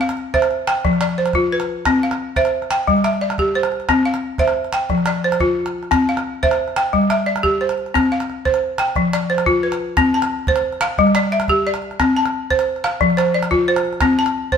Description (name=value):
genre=west african traditional, West African string and xylophone music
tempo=118 BPM (dotted quarters)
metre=12/8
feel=straight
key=C major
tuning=A4 = 440 Hz
part: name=balafon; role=arpeggios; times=0.0-14.6 s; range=F3 to A5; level=-16 LUFS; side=left 1 dB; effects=none
part: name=calabash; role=percussion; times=0.0-14.6 s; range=none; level=-24 LUFS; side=right 2 dB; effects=none
room=wet stone room reverb, RT60 1.2 s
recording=band playing live in one room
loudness=-16 LUFS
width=side -7 dB against mid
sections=0.0-10.0 A section; 10.0-14.6 B section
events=none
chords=0.0 C; 0.8 F5; 1.9 C; 2.9 G5; 3.9 C; 4.9 F5; 5.9 C; 6.9 G5; 7.9 C5; 9.0 F5; 10.0 F/C; 11.0 G5; 12.0 F/C; 13.0 F5; 14.0 F/C (rootless)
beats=0.34 0.84 1.35 | 1.86 2.37 2.87 3.38 | 3.89 4.40 4.90 5.41 | 5.92 6.42 6.93 7.44 | 7.95 8.45 8.96 9.47 | 9.97 10.48 10.98 11.49 | 11.99 12.50 13.01 13.51 | 14.02 14.53